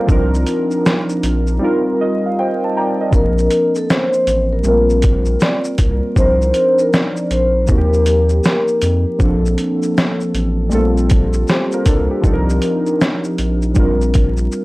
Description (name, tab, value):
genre	lo-fi hip hop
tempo	79 BPM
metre	4/4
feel	swing 65% on 16ths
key	Bb major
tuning	A4 = 441 Hz
part	warbly lo-fi synth keys	accompaniment	0.0-14.6 s	F3 to Bb5	-18 LUFS	equal	chorus, cassette tape, low-pass filter
part	round analog bass	bass	0.1-14.5 s	A1 to F2	-17 LUFS	equal	none
part	trip hop sampler-style drum kit	drums	0.1-14.6 s	hi-hat, kick drum, shaker, snare drum	-16 LUFS	equal	none
part	vibraphone with soft mallets	melody	3.1-9.2 s	A4 to D5	-17 LUFS	left 1 dB	low-pass filter
room	light reverb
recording	dry, gritty hardware recording, vinyl crackle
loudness	-13 LUFS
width	side -21 dB against mid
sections	0.0-14.6 A section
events	drums muted 1.6-3.1; synth keys fill 1.6-3.1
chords	0.1 Cm11; 1.6 Eb69; 3.1 Bbmaj9; 4.6 Gm7/Bb; 6.2 Cm11; 7.7 Eb69; 9.2 Bbmaj9; 10.7 Gm11/Bb; 12.2 Cm11; 13.8 Bb69